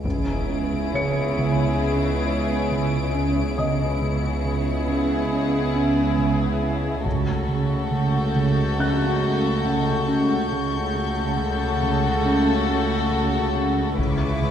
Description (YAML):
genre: cinematic, suspense film score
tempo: 69 BPM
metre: 4/4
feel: straight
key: C# minor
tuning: A4 = 444 Hz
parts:
  - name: warm studio violin section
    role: second line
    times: 0.0-14.5 s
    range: E4 to F#4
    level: -29 LUFS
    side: left 2 dB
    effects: none
  - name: dark symphonic double bass section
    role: bass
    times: 0.0-14.5 s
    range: C#2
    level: -28 LUFS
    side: right 1 dB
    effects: none
  - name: warm studio cello section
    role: bass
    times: 0.0-14.5 s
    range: C#3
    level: -30 LUFS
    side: right 2 dB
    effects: none
  - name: overtone-sweeping drone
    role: drone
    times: 0.0-14.5 s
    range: C#2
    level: -30 LUFS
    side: equal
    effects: chorus, built-in reverb
  - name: taiko ensemble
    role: drums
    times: 0.0-14.5 s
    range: none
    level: -31 LUFS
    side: left 1 dB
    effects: none
  - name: felt-muted upright piano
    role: texture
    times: 0.0-14.0 s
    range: C#5 to C#7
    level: -33 LUFS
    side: left 2 dB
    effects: none
  - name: warm symphonic violin section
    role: texture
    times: 0.0-14.5 s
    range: C#5 to D7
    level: -34 LUFS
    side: left 4 dB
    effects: none
  - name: warm symphonic violin section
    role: melody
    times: 0.1-14.5 s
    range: G#4 to B4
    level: -30 LUFS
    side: left 3 dB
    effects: none
  - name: warm studio viola section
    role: accompaniment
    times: 0.1-14.5 s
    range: G#3 to B3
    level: -30 LUFS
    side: right 2 dB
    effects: none
  - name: smooth synth bass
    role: riff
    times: 0.1-14.5 s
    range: C#3 to C#4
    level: -25 LUFS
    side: right 2 dB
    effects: none
  - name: impact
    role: sound effects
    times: 0.1-3.6 s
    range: none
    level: -31 LUFS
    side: left 1 dB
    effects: none
room: wet scoring stage reverb, RT60 1.9 s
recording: heard from further back in the room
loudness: -20 LUFS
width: side -9 dB against mid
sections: 0.0-14.5 A section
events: impact 0.0-3.6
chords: 0.0 C#m7; 7.1 F#m/C#; 14.0 C#m7